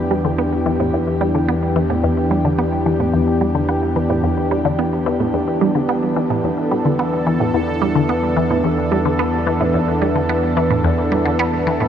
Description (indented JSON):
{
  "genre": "ambient",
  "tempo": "109 BPM",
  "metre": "4/4",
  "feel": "straight",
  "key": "E minor",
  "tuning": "A4 = 441 Hz",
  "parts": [
    { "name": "sweeping resonant pad", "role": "sustained chords", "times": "0.0-11.9 s", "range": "E3 to A4", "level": "-18 LUFS", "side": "equal", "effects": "chorus, shimmer reverb" },
    { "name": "analog drone", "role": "bass", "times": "0.0-11.9 s", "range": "E2", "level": "-25 LUFS", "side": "equal", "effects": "chorus" },
    { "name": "resonant blip pluck", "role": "riff", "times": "0.1-11.9 s", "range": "E2 to B3", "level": "-20 LUFS", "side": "equal", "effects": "phaser, analog delay, shimmer reverb" }
  ],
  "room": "wet huge ambient reverb, RT60 7.8 s",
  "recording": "none",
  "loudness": "-15 LUFS",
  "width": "side -9 dB against mid",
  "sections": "0.0-11.9 A section",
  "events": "none",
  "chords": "0.0 Em7"
}